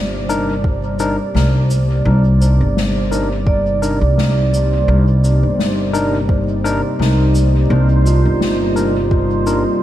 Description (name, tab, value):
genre	ambient dub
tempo	85 BPM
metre	4/4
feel	swing 56% on 16ths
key	C minor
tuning	A4 = 440 Hz
part	warm analog pad	sustained chords	0.0-9.8 s	C3 to D5	-20 LUFS	left 1 dB	chorus
part	upright bass	bass	0.0-9.6 s	G1 to C2	-15 LUFS	equal	none
part	bubbling stepped-filter texture	texture	0.0-9.8 s	C5	-28 LUFS	right 1 dB	chorus, built-in reverb
part	overdriven tine electric piano	stabs	0.3-9.6 s	D4 to Bb4	-24 LUFS	left 2 dB	auto-pan, dub echo
part	shaker and snare drum	drums	0.3-9.6 s	none	-26 LUFS	left 3 dB	dub echo
part	electronic kick drum	drums	0.6-9.3 s	none	-16 LUFS	equal	none
part	vibraphone with soft mallets	arpeggios	3.5-9.8 s	Eb4 to D5	-21 LUFS	right 4 dB	vintage 12-bit sampler grit, dub echo
room	light reverb, small room ambience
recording	vinyl crackle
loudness	-13 LUFS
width	side -13 dB against mid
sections	0.0-9.8 A section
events	none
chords	0.0 Cm9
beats	0.65 1.35 | 2.06 2.76 3.47 4.17 | 4.88 5.59 6.29 7.00 | 7.70 8.41 9.12 9.82